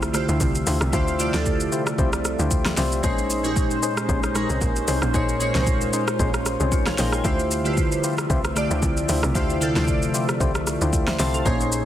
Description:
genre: amapiano.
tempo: 114 BPM.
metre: 4/4.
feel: swing 55% on 16ths.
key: unclear.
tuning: A4 = 441 Hz.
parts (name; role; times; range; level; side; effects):
glassy digital keys; accompaniment; 0.0-11.8 s; Bb2 to C6; -25 LUFS; right 1 dB; chorus.
lush unison pad; sustained chords; 0.0-11.8 s; C3 to E5; -30 LUFS; equal; chorus, phaser, sidechain pumping.
tight log drum bass; bass; 0.0-11.8 s; Bb1 to D2; -26 LUFS; equal; none.
deep house drum kit; drums; 0.0-11.8 s; hi-hat, kick drum, rim click, shaker, snare drum; -24 LUFS; equal; soft clipping on snare.
percussive organ stab; stabs; 0.3-11.8 s; Db4 to C5; -29 LUFS; left 5 dB; chorus, digital delay.
room: light reverb.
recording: dense, heavily limited modern master.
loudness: -20 LUFS.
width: side -12 dB against mid.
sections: 0.0-11.8 A section.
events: none.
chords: 0.0 Dm11; 3.0 Bbm11; 7.2 Dm11.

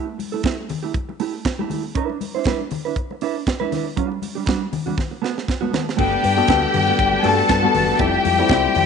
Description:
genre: disco.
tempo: 119 BPM.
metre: 4/4.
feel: swing 56% on 16ths.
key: G major.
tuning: A4 = 437 Hz.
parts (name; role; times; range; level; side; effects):
mellow electric guitar; accompaniment; 0.0-8.8 s; G3 to C5; -25 LUFS; right 11 dB; harmonic tremolo.
tight funk drum kit; drums; 0.2-8.9 s; crash cymbal, hi-hat, kick drum, snare drum; -24 LUFS; right 2 dB; none.
congas; percussion; 0.2-8.9 s; none; -29 LUFS; left 10 dB; none.
clear studio string section; second line; 6.0-8.9 s; G4 to A5; -18 LUFS; left 4 dB; none.
tine electric piano; accompaniment; 6.0-8.9 s; G3 to C5; -22 LUFS; left 12 dB; wide subtle chorus.
bright tonewheel organ; sustained chords; 6.0-8.9 s; G3 to A5; -28 LUFS; equal; stopped rotary speaker.
fingered electric bass with an envelope filter; bass; 6.0-8.9 s; F1 to G2; -24 LUFS; left 1 dB; none.
room: moderate echo chamber reverb, RT60 1.4 s, small room ambience.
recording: 1960s-style stereo with parts hard left and right, nothing above 10.3 kHz.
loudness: -18 LUFS.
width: side -6 dB against mid.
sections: 0.0-6.0 A section; 6.0-8.9 B section.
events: drum fill 5.0-6.0.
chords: 0.0 Emadd11/A; 2.0 Cmaj9 (rootless); 4.0 Dadd11/G; 5.0 F#madd11/A; 6.0 Gmaj9; 8.0 Fmaj9.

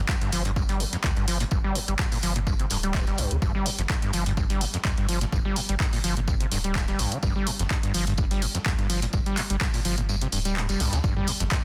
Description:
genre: acid house.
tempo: 126 BPM.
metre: 4/4.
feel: swing 53% on 16ths.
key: G minor.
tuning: A4 = 440 Hz.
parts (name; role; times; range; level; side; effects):
warm sub bass; bass; 0.0-11.5 s; D1 to D2; -31 LUFS; equal; sidechain pumping.
overdriven acid bass; riff; 0.1-11.6 s; F2 to G3; -31 LUFS; equal; distortion, tube saturation, analog chorus, digital delay.
electronic kick drum; drums; 0.1-11.6 s; none; -29 LUFS; equal; none.
punchy analog drum machine; drums; 0.1-11.6 s; handclaps, hi-hat, toms; -33 LUFS; equal; none.
vintage drum kit; drums; 0.1-11.6 s; hi-hat, snare drum, tambourine; -40 LUFS; equal; high-pass filter on hats, high-pass filter on snare, high-pass filter on perc, high-pass filter on room.
room: light reverb, studio reverb.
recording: dense, heavily limited modern master.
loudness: -26 LUFS.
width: mono.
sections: 0.0-11.6 A section.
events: kick drops out 10.1-11.0.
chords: 0.0 G5.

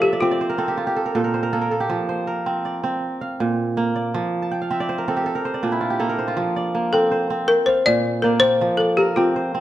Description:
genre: west african traditional, West African string and xylophone music.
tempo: 107 BPM (dotted quarters).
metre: 12/8.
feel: straight.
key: F major.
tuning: A4 = 440 Hz.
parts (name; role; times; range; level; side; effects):
balafon; melody; 0.0-0.9, 6.9-9.6 s; F4 to D5; -18 LUFS; left 2 dB; none.
kora; arpeggios; 0.0-9.6 s; Bb2 to A5; -21 LUFS; right 2 dB; none.
room: moderate recital hall reverb, RT60 1.6 s.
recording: dark, warm production.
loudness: -19 LUFS.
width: side -13 dB against mid.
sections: 0.0-6.4 A section; 6.4-9.6 A section.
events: kora fill 0.0-1.9, 4.4-6.4.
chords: 0.0 F5; 0.8 N.C.; 1.9 F5; 3.0 Bb; 4.1 F5; 5.3 N.C.; 6.4 F; 7.5 Bb; 8.6 F5.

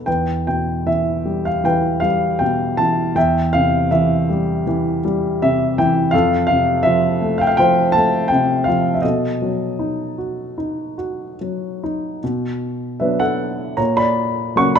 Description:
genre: classical, lyrical solo piano.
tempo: 69-84 BPM.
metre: 4/4.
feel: rubato.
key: E phrygian.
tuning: A4 = 439 Hz.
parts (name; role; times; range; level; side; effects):
warm grand piano; solo; 0.0-14.8 s; E2 to C#6; -16 LUFS; equal; none.
room: moderate recital hall reverb, RT60 1.6 s.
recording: minimal, uncompressed stereo recording.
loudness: -16 LUFS.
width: side -7 dB against mid.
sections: 0.1-12.2 A section; 12.2-14.8 B section.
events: grand piano fill 5.0-6.1.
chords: 0.1 Em; 3.2 C/E; 6.1 F; 9.0 B7; 12.2 Bm; 13.8 F#/A#.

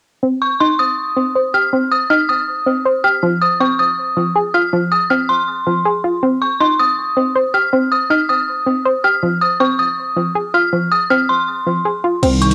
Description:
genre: hip hop, trap.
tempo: 160 BPM.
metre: 4/4.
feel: half-time.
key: F minor.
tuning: A4 = 442 Hz.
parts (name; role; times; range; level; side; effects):
hollow square pluck; arpeggios; 0.2-12.5 s; F3 to C5; -20 LUFS; equal; chorus, low-pass filter, cassette tape, analog delay, plate reverb.
dark detuned synth bell; second line; 0.4-12.5 s; C6 to F6; -18 LUFS; equal; chorus, cassette tape, analog delay.
dark analog pad; sustained chords; 12.2-12.5 s; C3 to Eb4; -18 LUFS; equal; lush chorus, cassette tape.
distorted 808-style bass; bass; 12.2-12.5 s; C2; -20 LUFS; equal; distortion.
trap drum kit; drums; 12.2-12.5 s; crash cymbal, hi-hat; -25 LUFS; equal; cassette tape.
room: moderate booth ambience, RT60 0.2 s.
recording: home recording on cassette.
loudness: -16 LUFS.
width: mono.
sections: 0.2-12.2 A section.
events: filter sweep on synth pluck 0.2-12.2.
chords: 0.2 Cm; 3.2 Fm; 6.2 Cm; 9.2 Fm.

